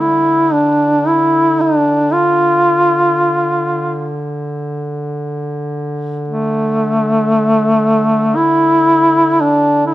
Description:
caucasian folk, Caucasian lament; free time; D minor; A4 = 440 Hz
warm duduk; melody; 0.0-9.9 s; A3 to F4; -11 LUFS; equal
breathy duduk; drone; 0.0-9.9 s; D3; -22 LUFS; equal
light reverb; nothing above 10.7 kHz; -12 LUFS; side -15 dB against mid
0.0-9.9 A section

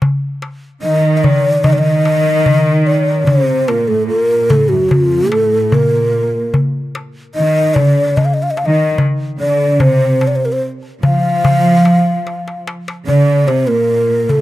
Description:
Turkish makam ensemble; 74 BPM; 4/4; straight; F makam hicaz; A4 = 440 Hz
darbuka; percussion; 0.0-14.4 s; -15 LUFS; left 1 dB
breathy mellow low ney; melody; 0.8-14.4 s; F4 to F5; -14 LUFS; left 1 dB
warm studio cello section; second line; 0.8-14.4 s; F2 to F3; -16 LUFS; right 2 dB
small room ambience; dry, close 1970s-style studio recording; -11 LUFS; side -15 dB against mid
0.0-13.1 A section; 13.1-14.4 B section
drum fill 12.3-13.1

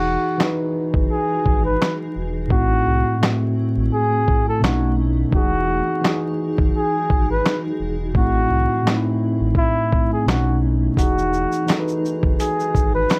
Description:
lo-fi hip hop; 85 BPM; 4/4; swing 55% on 16ths; E major; A4 = 441 Hz
trumpet with bucket mute; melody; 0.0-13.2 s; E4 to B4; -24 LUFS; equal
mellow tine electric piano; accompaniment; 0.0-13.2 s; A2 to B4; -24 LUFS; equal; cassette tape
granular cloud pad; sustained chords; 0.8-13.2 s; E3 to G#4; -35 LUFS; equal; built-in reverb
sub bass with octave; bass; 0.0-13.1 s; E1 to C2; -26 LUFS; equal
dusty soul sampler-style drum kit; drums; 0.4-13.2 s; handclaps, hi-hat, kick drum, shaker, snare drum; -22 LUFS; equal
light reverb; vinyl crackle; -20 LUFS; mono
0.0-13.2 A section
break 0.0-11.0
0.0 Emaj9; 2.5 Am; 4.6 B9; 5.3 Emaj9; 8.1 Am; 10.3 B9; 11.0 Emaj9

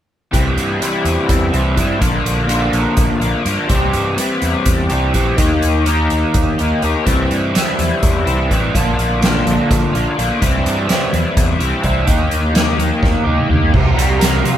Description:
psychedelic rock; 250 BPM (eighths); 7/8; straight; C mixolydian; A4 = 441 Hz
crunchy overdriven guitar; riff; 0.3-14.6 s; Bb2 to Bb4; -16 LUFS; left 1 dB; rotary speaker
fingered electric bass; bass; 0.3-14.6 s; A1 to C3; -19 LUFS; equal
soft-mallet drum kit; drums; 0.3-14.6 s; crash cymbal, hi-hat, kick drum, snare drum, toms; -18 LUFS; equal
ensemble organ-string; sustained chords; 13.7-14.6 s; G4 to C6; -22 LUFS; right 3 dB; ensemble chorus
light reverb; band playing live in one room; -13 LUFS; side -10 dB against mid
0.3-13.7 A section
drum fill 13.0-13.7
0.3 C; 2.0 Bb; 3.7 C; 5.4 Eb; 7.1 C; 8.7 Bb; 10.4 C; 12.1 Eb; 13.7 C7sus4

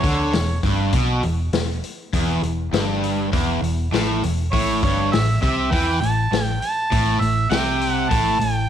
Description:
blues rock power trio and southern rock; 100 BPM; 4/4; straight; A4 = 440 Hz
bright harmonica; melody; 0.0-0.6, 4.5-8.7 s; C#5 to A5; -23 LUFS; right 2 dB; overdrive, slapback echo
cranked stack guitar; riff; 0.0-8.6 s; E2 to E3; -21 LUFS; equal; overdrive
vintage muted fingered electric bass; bass; 0.0-8.7 s; E1 to E2; -25 LUFS; equal
vintage drum kit; drums; 0.0-8.6 s; hi-hat, kick drum, snare drum; -24 LUFS; left 2 dB
light reverb, studio reverb; 1960s-style stereo; -18 LUFS; side -9 dB against mid
0.0-8.7 A section
0.0 E5; 4.5 A5

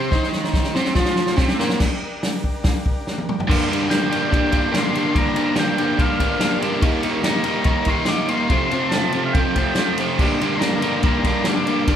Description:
garage rock duo or trio; 143 BPM; 4/4; straight; G minor; A4 = 445 Hz
combo organ; melody; 0.0-0.3, 3.9-11.9 s; C5 to D6; -25 LUFS; left 2 dB
overdriven combo organ; sustained chords; 0.0-12.0 s; C4 to C6; -33 LUFS; left 1 dB
overdriven electric guitar; riff; 0.0-12.0 s; F2 to F4; -20 LUFS; equal
vintage drum kit; drums; 0.1-12.0 s; crash cymbal, hi-hat, kick drum, ride cymbal, snare drum, toms; -21 LUFS; equal
moderate large studio reverb, RT60 0.9 s; band playing live in one room; -17 LUFS; side -9 dB against mid
0.0-1.8 A section; 1.8-3.5 B section; 3.5-12.0 C section
transistor combo organ solo 0.0-1.8; drum fill 0.1-1.8, 3.1-3.5; transistor combo organ fill 1.0-1.8
0.0 C5; 1.8 Gm; 6.8 Eb; 8.5 F; 10.2 Gm

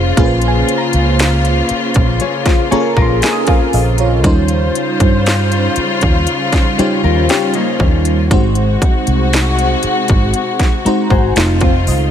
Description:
contemporary R&B; 59 BPM; 4/4; straight; Bb minor; A4 = 441 Hz
FM electric piano with soft pad layer; accompaniment; 0.0-12.1 s; G3 to Bb5; -17 LUFS; right 1 dB; chorus, tremolo
warm studio string section; sustained chords; 0.0-12.1 s; C3 to C5; -19 LUFS; left 3 dB
vintage muted fingered electric bass; bass; 0.0-12.1 s; F1 to G2; -15 LUFS; equal
trap drum kit; drums; 0.2-12.1 s; hi-hat, kick drum, snare drum; -15 LUFS; equal
soft round pluck; texture; 0.2-5.3 s; F5 to Eb6; -26 LUFS; right 3 dB; chorus, ping-pong delay
nylon-string guitar; arpeggios; 2.2-12.1 s; Bb3 to Db5; -20 LUFS; left 11 dB; ping-pong delay
digital ambience; -11 LUFS; side -9 dB against mid
0.0-12.1 A section
FM electric piano fill 2.2-4.2, 10.3-12.1
0.0 Bbm9; 4.2 Eb13; 8.3 Ab7; 11.4 F7

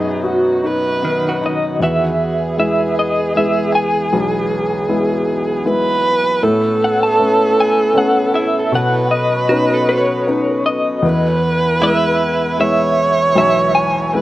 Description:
acoustic folk-pop ballad; 78 BPM; 3/4; straight; E major; A4 = 440 Hz
electric guitar through a small old amp; melody; 0.0-14.2 s; C#5 to A5; -18 LUFS; equal; tremolo
dark viola; second line; 0.0-14.2 s; F#4 to C#5; -17 LUFS; right 2 dB; slapback echo
warm upright piano; accompaniment; 0.0-14.2 s; B1 to F#4; -18 LUFS; left 2 dB; slapback echo
hand-pumped harmonium; sustained chords; 0.0-14.2 s; F#3 to G#5; -26 LUFS; equal
direct-recorded clean electric guitar; arpeggios; 1.0-4.3, 8.3-14.2 s; D#3 to B4; -25 LUFS; right 2 dB; tremolo, slapback echo
little or no reverb; recorded outdoors, with no room sound; -13 LUFS; side -15 dB against mid
0.0-1.8 A section; 1.8-14.2 B section
0.0 B; 1.8 E; 6.4 Aadd9; 8.7 Badd9; 11.0 E

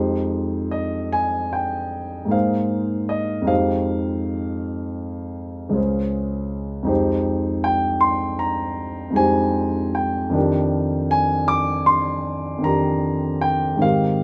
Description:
classical, impressionist solo piano; 52 BPM (dotted quarters); 9/8; rubato; F minor; A4 = 440 Hz
warm concert grand piano; solo; 0.0-14.2 s; Db2 to D6; -22 LUFS; equal
light reverb; -22 LUFS; mono
0.0-14.2 A section
0.0 Fm9; 2.3 Abadd9; 3.5 Fm9; 5.8 Db5; 6.9 Fm11; 10.3 Cm9/F

